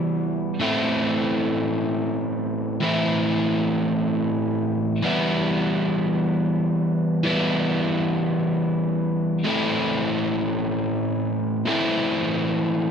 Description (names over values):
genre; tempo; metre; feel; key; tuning
rock; 81 BPM; 3/4; straight; unclear; A4 = 438 Hz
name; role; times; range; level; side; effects
crunchy overdriven guitar; solo; 0.0-12.9 s; A2 to E4; -21 LUFS; equal; none
room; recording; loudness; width
moderate lush hall reverb, RT60 2.0 s; none; -21 LUFS; side -7 dB against mid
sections
0.0-12.9 A section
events
none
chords
0.0 Em; 0.6 Am; 5.0 Em; 9.5 Am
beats
| 0.61 1.35 2.08 | 2.82 3.56 4.30 | 5.03 5.77 6.51 | 7.24 7.98 8.72 | 9.45 10.19 10.93 | 11.66 12.40